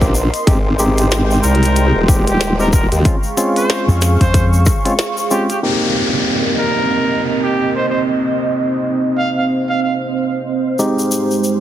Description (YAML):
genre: glitch hop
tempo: 93 BPM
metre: 4/4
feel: swing 59% on 16ths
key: C phrygian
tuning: A4 = 439 Hz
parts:
  - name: dark analog pad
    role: sustained chords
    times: 0.0-11.6 s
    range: Ab3 to Db6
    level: -19 LUFS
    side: right 2 dB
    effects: chorus, sidechain pumping
  - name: barky tine electric piano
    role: stabs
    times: 0.0-11.6 s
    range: Ab3 to G4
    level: -20 LUFS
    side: equal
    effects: sidechain pumping, low-pass filter, dub echo
  - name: formant-sweep wobble bass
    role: bass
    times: 0.0-3.0 s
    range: Eb1 to Eb2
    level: -15 LUFS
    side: equal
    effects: chorus
  - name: electronic kick drum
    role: drums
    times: 0.0-4.8 s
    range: none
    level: -14 LUFS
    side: equal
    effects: overdrive
  - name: tube shaker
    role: percussion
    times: 0.0-5.6, 10.8-11.6 s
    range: none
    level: -26 LUFS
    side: left 3 dB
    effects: none
  - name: glitchy drum kit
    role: drums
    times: 0.3-5.6 s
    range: hi-hat, rim click, snare drum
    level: -22 LUFS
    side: equal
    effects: none
  - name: clear trumpet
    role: melody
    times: 1.4-9.9 s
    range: G4 to F5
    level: -22 LUFS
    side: equal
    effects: dub echo
  - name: slap bass with an envelope filter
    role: bass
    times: 3.9-4.6 s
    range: F2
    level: -13 LUFS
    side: equal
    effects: none
  - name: downlifter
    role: sound effects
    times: 5.6-10.8 s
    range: none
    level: -22 LUFS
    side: equal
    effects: none
room: moderate lush hall reverb, RT60 1.9 s, digital ambience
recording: heavily compressed radio sound, multiband compression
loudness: -13 LUFS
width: side -12 dB against mid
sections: 0.0-5.6 A section; 5.6-11.6 B section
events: drop 0.0-5.6; break 5.0-5.6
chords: 0.5 Abmaj7; 3.1 Dbmaj7; 5.6 Cm7; 10.8 Abmaj7